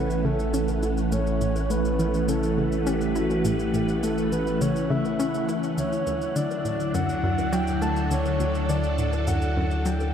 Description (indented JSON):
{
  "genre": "ambient, sequencer-driven space music",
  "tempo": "103 BPM",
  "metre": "4/4",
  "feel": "straight",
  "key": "unclear",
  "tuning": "A4 = 439 Hz",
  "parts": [
    { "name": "breathy flute-like synth lead", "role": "melody", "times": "0.0-10.1 s", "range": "F#4 to A5", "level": "-29 LUFS", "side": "equal", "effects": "chorus, ping-pong delay" },
    { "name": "phased string machine", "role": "sustained chords", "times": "0.0-10.1 s", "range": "D3 to B4", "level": "-27 LUFS", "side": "equal", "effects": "ensemble chorus, phaser" },
    { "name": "analog pluck", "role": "riff", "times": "0.0-9.9 s", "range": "D2 to E4", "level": "-29 LUFS", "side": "left 1 dB", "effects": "chorus, ping-pong delay" },
    { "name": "round analog bass", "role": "bass", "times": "0.0-10.1 s", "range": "A1 to D2", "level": "-29 LUFS", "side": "equal", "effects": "none" },
    { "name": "wind-like tuned noise texture", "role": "texture", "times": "0.0-10.1 s", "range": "E4 to F#5", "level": "-33 LUFS", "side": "right 1 dB", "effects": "built-in reverb" },
    { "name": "cabasa and bongos", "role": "percussion", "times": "0.1-10.1 s", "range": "none", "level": "-41 LUFS", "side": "left 2 dB", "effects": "overdrive, ping-pong delay" }
  ],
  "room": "wet cathedral reverb, RT60 5.5 s",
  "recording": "in a vast, echoing space",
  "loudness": "-22 LUFS",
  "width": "side -8 dB against mid",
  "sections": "0.0-10.1 A section",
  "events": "filter sweep on synth arpeggio sound 0.0-10.1; fade-out 8.9-10.1",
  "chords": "0.0 A6; 5.8 Dmaj7",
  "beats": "0.54 | 1.12 1.70 2.28 2.87 | 3.45 4.03 4.61 5.20 | 5.78 6.36 6.94 7.53 | 8.11 8.69 9.27 9.86"
}